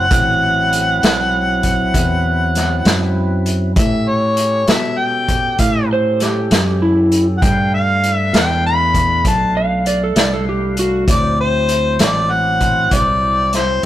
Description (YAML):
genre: slow blues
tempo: 66 BPM (dotted quarters)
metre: 12/8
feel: straight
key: D mixolydian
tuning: A4 = 439 Hz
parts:
  - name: warm harmonica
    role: melody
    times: 0.0-13.8 s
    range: C5 to B5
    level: -16 LUFS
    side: left 1 dB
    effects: overdrive
  - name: tonewheel organ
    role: sustained chords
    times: 0.0-13.9 s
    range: F#3 to F5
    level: -26 LUFS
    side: equal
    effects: slow rotary speaker
  - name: fingered electric bass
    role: bass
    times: 0.0-13.9 s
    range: A1 to B2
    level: -19 LUFS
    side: equal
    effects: none
  - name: vintage drum kit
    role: drums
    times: 0.1-13.9 s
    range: hi-hat, kick drum, snare drum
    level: -18 LUFS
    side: equal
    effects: none
  - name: electric slide guitar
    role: second line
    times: 5.9-11.1 s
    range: E4 to F5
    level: -17 LUFS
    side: right 1 dB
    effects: none
room: light reverb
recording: rough rehearsal-room recording, warm saturation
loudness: -13 LUFS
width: side -13 dB against mid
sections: 0.0-13.9 A section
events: none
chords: 0.0 D13 (rootless); 3.8 A13; 7.4 G13; 11.1 D9